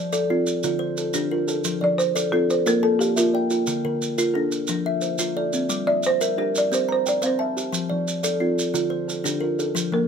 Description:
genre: southern african traditional, mbira-style interlocking cycle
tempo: 118 BPM (dotted quarters)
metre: 12/8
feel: straight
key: F major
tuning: A4 = 439 Hz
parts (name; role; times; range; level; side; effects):
- kalimba; arpeggios; 0.0-10.1 s; D3 to Bb5; -24 LUFS; left 4 dB; none
- kalimba; arpeggios; 0.0-10.1 s; D3 to G5; -27 LUFS; right 4 dB; none
- maracas; percussion; 0.1-9.9 s; none; -30 LUFS; right 5 dB; none
- folk marimba with soft mallets; melody; 1.8-10.1 s; F4 to D5; -21 LUFS; right 1 dB; none
room: light reverb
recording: none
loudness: -20 LUFS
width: side -6 dB against mid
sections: 0.0-9.8 A section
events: none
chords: 0.0 F; 0.6 Dm; 1.6 F; 2.7 Bb; 3.7 Dm; 4.7 F; 5.7 Gm; 6.7 C; 7.7 F; 8.8 Dm

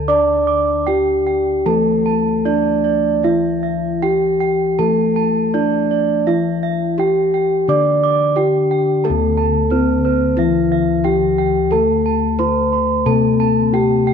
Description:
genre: Javanese gamelan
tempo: 76-90 BPM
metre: 4/4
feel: straight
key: D slendro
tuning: A4 = 440 Hz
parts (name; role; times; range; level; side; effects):
- gamelan-type bronze metallophone; melody; 0.0-14.1 s; C4-40c to D5; -17 LUFS; right 1 dB; none
- gamelan-type bronze metallophone; accompaniment; 0.0-14.1 s; E3+40c to D4; -20 LUFS; left 12 dB; none
- gamelan-type bronze metallophone; arpeggios; 0.0-14.1 s; C5-40c to D6; -21 LUFS; right 9 dB; none
- gamelan-type bossed gongs; bass; 0.0-14.1 s; D2 to D5; -22 LUFS; equal; none
room: moderate plate reverb, RT60 3.4 s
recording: 1960s-style stereo with parts hard left and right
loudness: -14 LUFS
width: side -7 dB against mid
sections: 0.0-9.1 A section; 9.1-14.1 B section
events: none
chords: none

